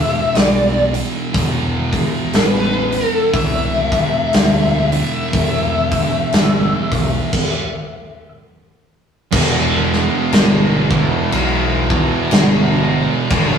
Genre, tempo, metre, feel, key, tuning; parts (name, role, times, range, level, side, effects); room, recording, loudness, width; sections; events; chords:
stoner and doom metal; 60 BPM; 4/4; swing 58% on 8ths; A4 = 444 Hz
fuzz lead guitar; melody; 0.0-8.3 s; B4 to E5; -19 LUFS; left 2 dB; wah, distortion
thick fuzz guitar; riff; 0.0-13.6 s; E2 to E3; -24 LUFS; left 4 dB; distortion
thick fuzz guitar; riff; 0.0-13.6 s; E2 to E3; -22 LUFS; right 6 dB; distortion
growling picked electric bass; bass; 0.3-13.6 s; E1 to D2; -22 LUFS; equal; overdrive
big rock drum kit; drums; 0.4-13.6 s; crash cymbal, hi-hat, kick drum, snare drum; -17 LUFS; equal
distorted electric guitar; riff; 9.3-13.6 s; E2 to E3; -20 LUFS; equal; overdrive
moderate studio reverb, RT60 0.6 s; rough rehearsal-room recording, tube saturation, studio ambience; -14 LUFS; side -7 dB against mid
0.0-9.3 A section; 9.3-13.6 B section
stop 7.3-9.3
0.0 E5; 9.3 Em